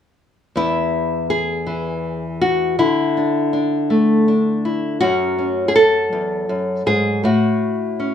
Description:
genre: folk, solo fingerstyle acoustic guitar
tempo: 54 BPM (dotted quarters)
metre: 6/8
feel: straight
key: unclear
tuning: A4 = 441 Hz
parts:
  - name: nylon-string guitar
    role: solo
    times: 0.6-8.1 s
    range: E2 to A4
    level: -16 LUFS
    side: left 1 dB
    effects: slapback echo
room: moderate studio reverb, RT60 0.6 s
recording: small room ambience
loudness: -16 LUFS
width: side -8 dB against mid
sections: 0.6-8.1 A section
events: none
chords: 0.6 N.C.; 2.8 Dsus2; 5.0 F#m; 7.2 A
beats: | 0.56 1.68 | 2.79 3.90 | 5.02 6.13 | 7.24

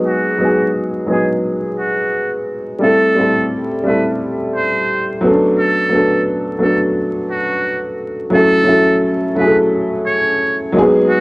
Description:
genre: hip hop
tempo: 87 BPM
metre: 4/4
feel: swing 62% on 16ths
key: F# minor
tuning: A4 = 439 Hz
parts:
  - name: warm upright piano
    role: accompaniment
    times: 0.0-11.2 s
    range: F#3 to A4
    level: -14 LUFS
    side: equal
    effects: cassette tape, low-pass filter
  - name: trumpet with metal mute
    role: melody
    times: 0.1-11.2 s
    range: F#4 to C#5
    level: -19 LUFS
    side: right 1 dB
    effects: low-pass filter
room: wet spring reverb, RT60 1.1 s, small room ambience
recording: worn, warbling old tape, cassette tape, vinyl crackle, warbly pitch drift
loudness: -13 LUFS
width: side -24 dB against mid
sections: 0.0-8.3 A section; 8.3-11.2 B section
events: filter sweep 0.0-8.3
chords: 0.0 G#m7; 2.8 Am7; 5.2 Bm7; 8.3 F#m7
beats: | 0.06 0.75 1.44 2.13 | 2.82 3.51 4.20 4.89 | 5.58 6.27 6.96 7.65 | 8.34 9.03 9.72 10.41 | 11.10

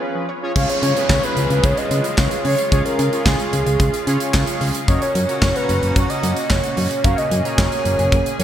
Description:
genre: synth-pop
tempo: 111 BPM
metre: 4/4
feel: straight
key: Db mixolydian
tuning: A4 = 438 Hz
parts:
  - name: mellow horn-like synth lead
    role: melody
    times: 0.0-8.4 s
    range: F4 to F5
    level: -22 LUFS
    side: equal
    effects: chorus
  - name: analog synth brass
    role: accompaniment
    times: 0.0-8.4 s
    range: Db4 to Bb5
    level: -25 LUFS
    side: right 1 dB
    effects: chorus
  - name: lush unison pad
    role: sustained chords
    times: 1.0-8.4 s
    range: Bb2 to Ab4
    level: -25 LUFS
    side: right 1 dB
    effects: chorus
  - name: solid FM bass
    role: bass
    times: 0.6-8.4 s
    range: Gb1 to Db3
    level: -20 LUFS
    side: equal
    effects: none
  - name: modern studio drum kit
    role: drums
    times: 0.6-8.4 s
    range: crash cymbal, handclaps, hi-hat, kick drum, snare drum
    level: -20 LUFS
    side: equal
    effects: none
  - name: downlifter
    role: sound effects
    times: 0.6-4.9 s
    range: none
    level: -30 LUFS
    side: equal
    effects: none
room: moderate lush hall reverb, RT60 2.5 s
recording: bright 1980s-style digital production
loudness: -16 LUFS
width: side -10 dB against mid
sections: 0.6-8.4 A section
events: break 0.0-0.6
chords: 0.0 Db; 4.9 Gb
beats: 0.02 | 0.56 1.10 1.64 2.18 | 2.72 3.26 3.80 4.34 | 4.88 5.42 5.96 6.50 | 7.04 7.58 8.12

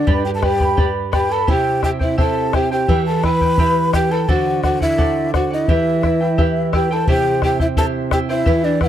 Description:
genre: andean folk, Andean ensemble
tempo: 86 BPM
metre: 2/4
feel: straight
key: unclear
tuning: A4 = 441 Hz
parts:
  - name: breathy mellow large quena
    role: melody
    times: 0.0-8.9 s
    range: D5 to B5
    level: -21 LUFS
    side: equal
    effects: none
  - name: breathy mellow pan flute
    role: second line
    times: 0.0-8.9 s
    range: D4 to B4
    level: -22 LUFS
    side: left 3 dB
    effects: none
  - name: charango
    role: accompaniment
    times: 0.0-8.9 s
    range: E4 to B5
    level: -22 LUFS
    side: equal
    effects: none
  - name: nylon-string guitar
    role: accompaniment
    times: 0.0-8.9 s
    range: G2 to E3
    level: -22 LUFS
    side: right 4 dB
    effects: none
  - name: bombo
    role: percussion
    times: 0.1-8.9 s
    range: none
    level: -20 LUFS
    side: left 1 dB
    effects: none
room: small room ambience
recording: dry, close 1970s-style studio recording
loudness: -15 LUFS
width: side -10 dB against mid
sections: 0.0-7.1 A section; 7.1-8.9 A section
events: none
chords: 0.1 G; 1.5 C; 2.9 Em; 4.3 D7; 5.7 Em; 7.1 C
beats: | 0.08 0.78 | 1.49 2.19 | 2.89 3.59 | 4.29 4.99 | 5.69 6.39 | 7.08 7.78 | 8.47

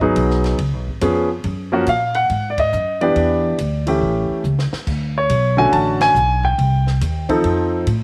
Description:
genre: jazz piano trio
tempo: 140 BPM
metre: 4/4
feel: swing 66% on 8ths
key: unclear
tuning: A4 = 443 Hz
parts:
  - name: warm concert grand piano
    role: melody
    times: 0.0-7.8 s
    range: D3 to A5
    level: -19 LUFS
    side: equal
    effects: none
  - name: upright bass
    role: bass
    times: 0.0-8.0 s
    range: Ab1 to Bb2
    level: -23 LUFS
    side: equal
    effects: none
  - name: compact cocktail drum kit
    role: drums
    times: 0.0-8.0 s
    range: crash cymbal, hi-hat, kick drum, ride cymbal, snare drum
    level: -34 LUFS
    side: equal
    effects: none
room: light reverb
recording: none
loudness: -18 LUFS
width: mono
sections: 0.0-8.0 A section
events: band accent 2.5, 5.9; drum fill 4.4-4.9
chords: 0.0 Abm7; 0.6 Db7; 1.4 Gbmaj7; 3.2 Em7; 4.0 A7; 4.9 Dmaj7; 6.6 Cm; 7.4 F7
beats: 0.16 0.58 1.01 | 1.44 1.87 2.30 2.73 | 3.15 3.58 4.01 4.44 | 4.87 5.29 5.72 6.15 | 6.58 7.01 7.44 7.87

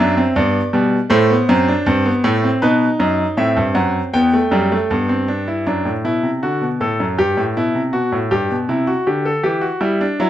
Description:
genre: classical, baroque-style 3-part fugue for grand piano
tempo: 79 BPM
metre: 4/4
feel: straight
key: unclear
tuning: A4 = 440 Hz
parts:
  - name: bright concert grand piano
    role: solo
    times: 0.0-10.3 s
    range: E2 to G5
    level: -14 LUFS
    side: equal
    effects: none
room: moderate large studio reverb, RT60 1.1 s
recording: minimal, uncompressed stereo recording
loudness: -15 LUFS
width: side -12 dB against mid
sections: 0.0-5.7 A section; 5.7-10.3 B section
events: none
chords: 0.0 Em; 1.1 F#dim; 2.6 B; 4.1 Em; 5.7 D/F#; 7.2 Gmaj7; 8.7 C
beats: 0.36 1.12 1.87 | 2.63 3.38 4.14 4.90 | 5.67 6.43 7.18 7.94 | 8.70 9.45 10.20

